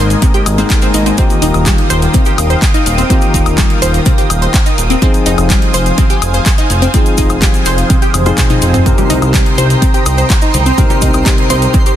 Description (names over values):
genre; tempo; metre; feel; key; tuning
progressive house; 125 BPM; 4/4; straight; unclear; A4 = 439 Hz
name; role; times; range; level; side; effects
lush unison pad; sustained chords; 0.0-12.0 s; Bb4 to Eb6; -20 LUFS; right 1 dB; chorus, phaser, sidechain pumping
wide unison pluck; arpeggios; 0.0-11.9 s; C3 to C6; -17 LUFS; equal; sidechain pumping, dub echo
dark grand piano; stabs; 0.0-12.0 s; Ab2 to Bb4; -17 LUFS; left 3 dB; sidechain pumping, dub echo
fat analog bass; bass; 0.0-11.7 s; Eb1 to C2; -14 LUFS; equal; sidechain pumping
pop drum kit; drums; 0.1-12.0 s; handclaps, hi-hat, toms, woodblock; -18 LUFS; left 2 dB; none
cabasa; percussion; 0.1-12.0 s; none; -25 LUFS; right 4 dB; none
electronic kick drum; drums; 0.2-11.8 s; none; -12 LUFS; equal; none
congas and bongos; percussion; 8.9-11.6 s; none; -23 LUFS; left 3 dB; none
twinkling granular texture; texture; 9.1-12.0 s; C5 to C6; -23 LUFS; equal; built-in reverb, sidechain pumping
room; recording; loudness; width
light reverb; dense, heavily limited modern master; -8 LUFS; side -11 dB against mid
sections
0.0-12.0 A section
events
drum fill 8.1-8.9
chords
0.0 Absus2; 1.2 Ebadd9; 5.0 Fm7; 8.9 Cm7